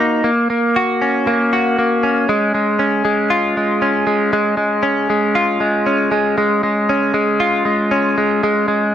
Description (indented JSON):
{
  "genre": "indie pop",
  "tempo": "117 BPM",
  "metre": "4/4",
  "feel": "straight",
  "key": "unclear",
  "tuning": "A4 = 442 Hz",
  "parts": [
    { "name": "direct-recorded clean electric guitar", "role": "solo", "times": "0.0-8.9 s", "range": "G#3 to F#4", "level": "-14 LUFS", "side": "equal", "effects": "analog chorus, slapback echo" }
  ],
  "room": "light reverb",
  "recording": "dry, close 1970s-style studio recording",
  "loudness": "-14 LUFS",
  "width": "side -10 dB against mid",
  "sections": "0.0-2.3 A section; 2.3-8.9 B section",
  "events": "none",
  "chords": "0.2 F#; 2.3 C#"
}